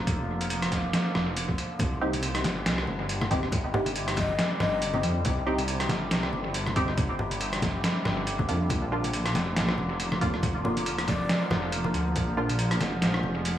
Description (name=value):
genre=deep dubstep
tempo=139 BPM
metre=4/4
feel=swing 56% on 16ths, half-time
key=C minor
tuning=A4 = 439 Hz
part: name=overtone-sweeping drone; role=sustained chords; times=0.0-13.6 s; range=C3 to Bb3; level=-33 LUFS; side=equal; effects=chorus, built-in reverb
part: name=dark detuned saw bass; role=bass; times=0.0-13.6 s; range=F1 to F2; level=-31 LUFS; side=equal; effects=none
part: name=electronic kick drum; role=drums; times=0.1-12.3 s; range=none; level=-30 LUFS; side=equal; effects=overdrive
part: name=trip hop sampler-style drum kit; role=drums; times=0.1-13.5 s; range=hi-hat, rim click, snare drum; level=-30 LUFS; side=equal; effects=overdrive, dub echo
part: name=congas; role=percussion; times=1.8-13.3 s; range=none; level=-35 LUFS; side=left 1 dB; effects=none
part: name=filtered dub chord stab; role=stabs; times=2.0-12.5 s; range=Bb3 to G4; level=-33 LUFS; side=right 1 dB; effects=wide subtle chorus, dub echo
part: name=breathy hollow ney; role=melody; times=4.2-5.0, 11.1-11.4 s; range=D5 to Eb5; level=-35 LUFS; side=left 4 dB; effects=dub echo
room=moderate echo chamber reverb, RT60 1.7 s, digital ambience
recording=echo-heavy mix, vinyl crackle, studio reverb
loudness=-25 LUFS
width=side -11 dB against mid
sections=0.0-13.6 A section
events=none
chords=0.0 Bb; 1.8 C5; 8.7 Bb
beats=| 0.07 0.50 0.93 1.37 | 1.80 2.23 2.66 3.09 | 3.52 3.96 4.39 4.82 | 5.25 5.68 6.11 6.55 | 6.98 7.41 7.84 8.27 | 8.70 9.14 9.57 10.00 | 10.43 10.86 11.29 11.73 | 12.16 12.59 13.02 13.45